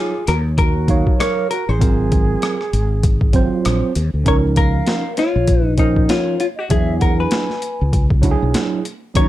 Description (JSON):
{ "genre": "hip hop, jazz-hop", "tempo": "98 BPM", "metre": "4/4", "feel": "swing 58% on 16ths", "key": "Db major", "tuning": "A4 = 440 Hz", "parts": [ { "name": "vintage hollow-body jazz guitar", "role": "melody", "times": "0.0-9.3 s", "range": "Eb4 to Db5", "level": "-22 LUFS", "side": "left 4 dB", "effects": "none" }, { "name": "mellow hollow silver concert flute", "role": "second line", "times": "0.0-9.3 s", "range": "F4 to Bb5", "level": "-26 LUFS", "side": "right 3 dB", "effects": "none" }, { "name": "bright tine electric piano", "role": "accompaniment", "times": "0.0-9.3 s", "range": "F3 to F5", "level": "-21 LUFS", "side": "right 5 dB", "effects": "overdrive, phaser" }, { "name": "mellow fretless electric bass", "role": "bass", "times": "0.3-9.3 s", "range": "Ab1 to E2", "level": "-18 LUFS", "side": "equal", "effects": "ensemble chorus" }, { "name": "boom bap sampler-style drum kit", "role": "drums", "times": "0.3-9.3 s", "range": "hi-hat, kick drum, rim click, snare drum", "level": "-18 LUFS", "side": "equal", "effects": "overdrive" } ], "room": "light reverb", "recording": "dark, warm production", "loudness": "-14 LUFS", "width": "side -14 dB against mid", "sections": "0.0-4.3 A section; 4.3-9.3 B section", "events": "none", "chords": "0.0 Ebm9; 1.8 Ab13; 4.3 Db69; 6.7 E9" }